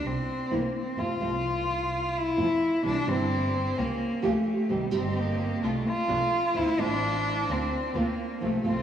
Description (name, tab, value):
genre	tango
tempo	129 BPM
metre	4/4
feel	rubato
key	F major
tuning	A4 = 437 Hz
part	rich cello	second line	0.0-8.8 s	G3 to F4	-27 LUFS	left 1 dB	none
part	dark double bass	bass	0.0-8.8 s	G1 to F2	-33 LUFS	right 2 dB	none
part	nylon-string guitar	accompaniment	0.5-8.7 s	C3 to A4	-32 LUFS	right 3 dB	ensemble chorus
part	rich chamber string section	stabs	2.8-8.8 s	A3 to G4	-37 LUFS	right 2 dB	analog delay
room	wet lush hall reverb, RT60 2.8 s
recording	dreamy mix soaked in reverb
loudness	-25 LUFS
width	side -9 dB against mid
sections	0.0-8.8 A section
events	cello solo 0.0-8.8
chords	0.0 N.C.; 0.5 C7; 1.0 F; 2.8 C; 3.8 Bbm6/Db; 4.7 Cm; 5.6 F6/C; 6.6 Dm7; 7.5 Bbadd9/D